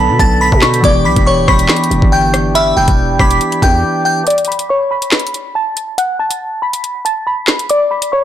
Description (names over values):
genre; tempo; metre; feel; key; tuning
hip hop, drill; 140 BPM; 4/4; half-time; B minor; A4 = 439 Hz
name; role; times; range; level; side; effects
glassy synth bell; melody; 0.0-8.2 s; C#5 to B6; -14 LUFS; left 1 dB; chorus, low-pass filter, tape echo
dark detuned synth bell; second line; 0.0-3.8 s; A5 to D6; -20 LUFS; right 2 dB; chorus, phaser, tape echo
muted felt-like synth keys; accompaniment; 0.0-4.3 s; B2 to D5; -21 LUFS; left 3 dB; chorus
chamber organ, flutes; sustained chords; 0.0-4.2 s; D3 to A4; -20 LUFS; right 2 dB; none
growling 808-style bass; bass; 0.0-3.8 s; E1 to B2; -16 LUFS; equal; none
drill drum kit; drums; 0.2-8.1 s; handclaps, hi-hat, kick drum, rim click, snare drum; -13 LUFS; equal; overdrive, soft clipping on snare
room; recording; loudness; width
light reverb; blown-out, overdriven recording, overdrive; -11 LUFS; side -11 dB against mid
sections
0.0-4.3 A section; 4.3-8.2 B section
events
break 3.8-4.3, 4.3-8.2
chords
0.0 Bm7; 0.8 Em7; 4.3 B7(no3); 7.7 E7(no3) (rootless)